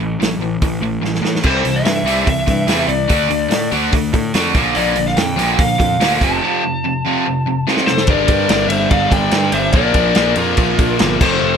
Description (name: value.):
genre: classic rock.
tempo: 144 BPM.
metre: 4/4.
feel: straight.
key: unclear.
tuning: A4 = 445 Hz.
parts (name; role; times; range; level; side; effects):
crunchy overdriven guitar; riff; 0.0-11.6 s; F2 to D4; -21 LUFS; left 12 dB; none.
crunchy overdriven guitar; riff; 0.0-8.1 s; F2 to D4; -20 LUFS; right 12 dB; none.
fuzz picked electric bass; bass; 0.0-11.6 s; F1 to A2; -21 LUFS; right 1 dB; overdrive.
vintage drum kit; drums; 0.2-11.3 s; crash cymbal, hi-hat, kick drum, ride cymbal, snare drum; -18 LUFS; equal; none.
lead guitar through a small cranked amp; melody; 1.5-11.6 s; Bb4 to A5; -19 LUFS; left 2 dB; overdrive.
bright tonewheel organ; sustained chords; 7.8-11.6 s; A3 to F5; -28 LUFS; equal; none.
fuzz lead guitar; second line; 7.9-11.6 s; F4 to D5; -23 LUFS; right 6 dB; distortion.
overdriven electric guitar; riff; 8.1-11.6 s; F2 to Bb3; -21 LUFS; right 2 dB; none.
room: small room ambience.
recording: none.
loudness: -13 LUFS.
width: side -7 dB against mid.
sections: 0.0-1.4 A section; 1.4-8.1 B section; 8.1-11.6 C section.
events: drum fill 1.0-1.4, 7.7-8.1.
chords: 0.0 A5; 1.4 C; 3.1 Dm; 4.6 Bb; 6.2 F; 8.1 Gm; 9.8 Bb.